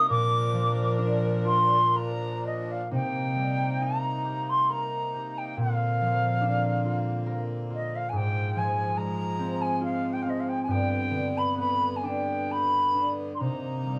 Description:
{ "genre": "celtic folk, Celtic slow air", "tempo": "60-72 BPM", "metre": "3/4", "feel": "rubato", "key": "C minor", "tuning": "A4 = 440 Hz", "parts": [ { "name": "wooden flute", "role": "melody", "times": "0.0-14.0 s", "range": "Eb5 to D6", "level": "-30 LUFS", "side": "equal", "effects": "none" }, { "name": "warm viola", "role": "second line", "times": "0.0-2.4 s", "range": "Bb4", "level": "-36 LUFS", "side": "equal", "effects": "none" }, { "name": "concert harp", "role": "accompaniment", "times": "0.0-14.0 s", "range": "G2 to Bb4", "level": "-31 LUFS", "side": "equal", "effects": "none" }, { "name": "accordion", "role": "sustained chords", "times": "0.0-14.0 s", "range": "G2 to Eb4", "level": "-39 LUFS", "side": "equal", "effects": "none" } ], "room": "moderate studio reverb, RT60 0.5 s", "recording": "band playing live in one room", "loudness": "-27 LUFS", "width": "mono", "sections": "0.0-2.9 A section; 2.9-14.0 B section", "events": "none", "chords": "0.1 Bb; 2.9 Cm7; 5.6 Bbadd9; 8.1 Fm/Ab; 10.7 G; 13.4 Cm7" }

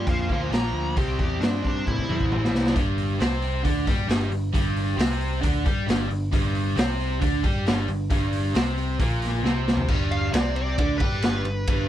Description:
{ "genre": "blues rock power trio and southern rock", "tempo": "134 BPM", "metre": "4/4", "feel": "straight", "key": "unclear", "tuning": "A4 = 438 Hz", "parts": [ { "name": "fuzz lead guitar", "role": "melody", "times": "0.0-2.7, 10.1-11.9 s", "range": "D4 to Bb5", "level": "-30 LUFS", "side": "equal", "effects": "wah, distortion" }, { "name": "raw garage guitar", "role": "riff", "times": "0.0-11.9 s", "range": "G2 to G4", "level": "-28 LUFS", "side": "right 1 dB", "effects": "overdrive" }, { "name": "overdriven picked electric bass", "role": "bass", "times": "0.0-11.9 s", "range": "G1 to A2", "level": "-27 LUFS", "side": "equal", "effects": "none" }, { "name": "raw garage drum kit", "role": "drums", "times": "0.1-11.8 s", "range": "crash cymbal, hi-hat, kick drum, ride cymbal, snare drum, toms", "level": "-25 LUFS", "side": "equal", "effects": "none" } ], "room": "little or no reverb", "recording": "none", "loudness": "-21 LUFS", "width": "side -12 dB against mid", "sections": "0.0-2.8 A section; 2.8-9.9 B section; 9.9-11.9 C section", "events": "drum fill 1.9-2.8, 9.4-9.9; lead electric guitar solo 9.9-11.9", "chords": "0.0 Bb; 1.0 C; 2.8 G5" }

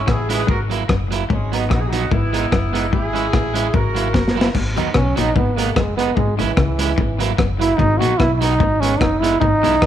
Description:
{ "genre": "ska", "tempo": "148 BPM", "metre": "4/4", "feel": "swing 54% on 8ths", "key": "G# minor", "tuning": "A4 = 440 Hz", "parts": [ { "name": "mellow horn section", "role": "melody", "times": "0.0-4.4 s", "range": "G#3 to B4", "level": "-24 LUFS", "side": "equal", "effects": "none" }, { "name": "electric guitar at the edge of break-up", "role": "accompaniment", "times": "0.1-9.9 s", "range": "F#3 to E4", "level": "-24 LUFS", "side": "right 9 dB", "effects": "none" }, { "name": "clean electric guitar", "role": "riff", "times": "0.1-9.9 s", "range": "F#2 to D#3", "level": "-26 LUFS", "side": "left 10 dB", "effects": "tape echo" }, { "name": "upright bass", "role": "bass", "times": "0.1-9.9 s", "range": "F#1 to D#2", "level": "-22 LUFS", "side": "left 1 dB", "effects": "none" }, { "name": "crunchy breakbeat drum kit", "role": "drums", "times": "0.1-9.9 s", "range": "crash cymbal, hi-hat, kick drum, rim click, snare drum", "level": "-20 LUFS", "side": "equal", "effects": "none" }, { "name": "clear trombone", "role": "melody", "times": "5.0-9.9 s", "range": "E3 to F#4", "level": "-19 LUFS", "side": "right 2 dB", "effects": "none" } ], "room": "moderate echo chamber reverb, RT60 1.3 s, small room ambience", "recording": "1960s-style stereo with parts hard left and right", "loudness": "-15 LUFS", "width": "side -10 dB against mid", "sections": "0.0-4.5 A section; 4.5-9.9 B section", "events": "drum fill 4.1-4.5; trombone solo 4.5-9.9", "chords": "0.5 F#7/G#; 1.3 G#m7; 2.1 Emaj7/G#; 2.9 Amaj7/G#; 3.7 F#7/G#; 4.5 G#m7; 5.4 G#m9; 6.2 Amaj7/G#; 7.0 F#7/G#; 7.8 G#m7; 8.6 F#13sus4" }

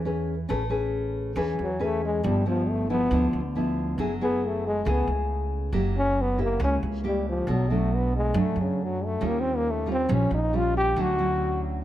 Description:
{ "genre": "bossa nova", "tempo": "137 BPM", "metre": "4/4", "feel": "straight", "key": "A major", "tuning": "A4 = 440 Hz", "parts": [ { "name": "warm trombone", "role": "melody", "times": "0.0-11.6 s", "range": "C#3 to G4", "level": "-27 LUFS", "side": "left 1 dB", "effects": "none" }, { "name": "nylon-string guitar", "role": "accompaniment", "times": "0.0-11.8 s", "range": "F#2 to B4", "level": "-28 LUFS", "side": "equal", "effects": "none" }, { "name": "upright bass", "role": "bass", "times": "0.0-11.8 s", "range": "F#1 to F#2", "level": "-28 LUFS", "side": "right 1 dB", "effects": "none" } ], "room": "light reverb", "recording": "none", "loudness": "-23 LUFS", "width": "side -13 dB against mid", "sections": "0.5-11.8 A section", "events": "trombone solo 0.5-11.8", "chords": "0.5 Amaj9; 2.2 G6; 4.0 F#m9; 5.7 F#7b9; 7.5 Bm7; 9.2 D#9; 11.0 Dmaj9" }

